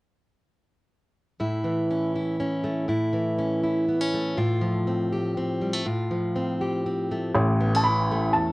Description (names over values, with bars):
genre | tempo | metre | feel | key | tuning
indie folk with a building arrangement | 121 BPM | 3/4 | straight | unclear | A4 = 440 Hz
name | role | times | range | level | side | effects
fingerpicked plugged-in steel-string acoustic guitar | accompaniment | 1.4-8.5 s | E2 to G4 | -24 LUFS | equal | cassette tape
dark baby grand piano | bass | 7.3-8.3 s | A1 | -23 LUFS | equal | none
dark upright piano | melody | 7.8-8.5 s | A5 to B5 | -23 LUFS | right 1 dB | none
room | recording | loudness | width
light reverb | home recording on cassette | -23 LUFS | side -21 dB against mid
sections
1.4-7.4 A section; 7.4-8.5 B section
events
none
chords
1.4 A; 4.4 F/A; 7.4 A